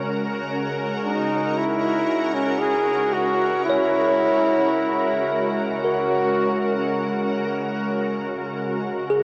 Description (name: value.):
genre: ambient.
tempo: 56 BPM.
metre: 4/4.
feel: straight.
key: unclear.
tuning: A4 = 440 Hz.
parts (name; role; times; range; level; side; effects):
shimmering ambient pad; sustained chords; 0.0-9.2 s; C#4 to A#4; -29 LUFS; equal; chorus, built-in reverb.
bell-like tine electric piano; arpeggios; 0.0-9.2 s; G#4 to C#5; -28 LUFS; equal; delay.
bowed-like drone; drone; 0.0-9.2 s; C#3 to G#3; -32 LUFS; equal; built-in reverb.
clear flugelhorn; melody; 1.0-6.9 s; C#4 to G#4; -26 LUFS; equal; delay.
room: wet huge ambient reverb, RT60 8.2 s.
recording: worn, warbling old tape, cassette tape, warbly pitch drift.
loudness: -22 LUFS.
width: mono.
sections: 0.0-9.2 A section.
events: none.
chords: 0.0 F#.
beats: 0.49 1.56 2.63 | 3.70 4.77 5.85 6.92 | 8.00 9.09.